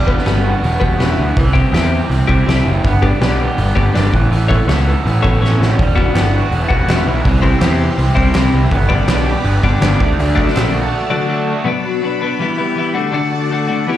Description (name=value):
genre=indie rock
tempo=163 BPM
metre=4/4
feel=straight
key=E minor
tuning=A4 = 440 Hz
part: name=raw garage guitar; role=riff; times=0.0-11.7 s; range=E3 to A4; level=-21 LUFS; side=right 4 dB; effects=overdrive, lush chorus, slapback echo
part: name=fuzz picked electric bass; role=bass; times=0.0-10.8 s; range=E1 to E2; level=-15 LUFS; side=equal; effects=overdrive
part: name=twelve-string electric guitar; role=riff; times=0.1-14.0 s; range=B2 to C#5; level=-19 LUFS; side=left 5 dB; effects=none
part: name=loose indie drum kit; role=drums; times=0.1-10.6 s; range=hi-hat, kick drum, snare drum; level=-18 LUFS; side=equal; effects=none
part: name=string machine, violins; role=sustained chords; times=5.8-14.0 s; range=F#4 to C6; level=-26 LUFS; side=right 1 dB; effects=ensemble chorus
part: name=group handclap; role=percussion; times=6.2-10.6 s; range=none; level=-31 LUFS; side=right 1 dB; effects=none
room=studio reverb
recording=live gig heard through the venue's PA, club reverb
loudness=-12 LUFS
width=side -12 dB against mid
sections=0.0-11.7 A section; 11.7-14.0 B section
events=drum fill 5.4-5.8; break 10.9-11.7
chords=0.0 Emadd9; 1.4 C; 2.8 G; 4.1 Aadd9; 5.8 Emadd9; 7.2 C; 8.7 G; 10.0 D; 11.7 Bm; 12.4 Em; 12.9 D